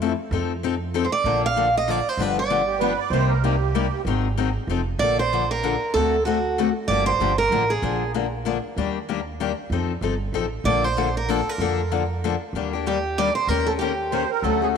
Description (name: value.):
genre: acoustic string swing (jazz manouche).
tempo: 191 BPM.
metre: 3/4.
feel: swing 60% on 8ths.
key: Bb major from 5.0 s.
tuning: A4 = 439 Hz.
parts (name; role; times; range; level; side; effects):
picked steel-string acoustic guitar; accompaniment; 0.0-14.8 s; C3 to Bb4; -24 LUFS; left 10 dB; none.
upright bass; bass; 0.0-14.8 s; F1 to F2; -27 LUFS; right 2 dB; none.
picked steel-string acoustic guitar; melody; 1.0-3.0, 5.0-8.1, 10.7-14.3 s; F#4 to F5; -23 LUFS; right 4 dB; none.
musette accordion; second line; 2.7-4.0, 14.1-14.8 s; G4 to D5; -26 LUFS; right 12 dB; none.
room: moderate plate reverb, RT60 3.2 s.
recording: 1960s-style stereo with parts hard left and right.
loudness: -20 LUFS.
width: side -7 dB against mid.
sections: 0.0-5.0 A section; 5.0-12.5 B section; 12.5-14.8 C section.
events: none.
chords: 0.3 F7; 1.2 Bbmaj7; 2.2 G7; 3.1 Cm7; 4.1 Ab7; 4.7 F7; 5.0 Bbmaj7; 5.9 D7; 6.9 Gm7; 7.8 Bb7; 8.8 Ebmaj7; 9.7 F9; 10.7 Bbmaj7; 12.5 Ebmaj7; 13.5 Eb7.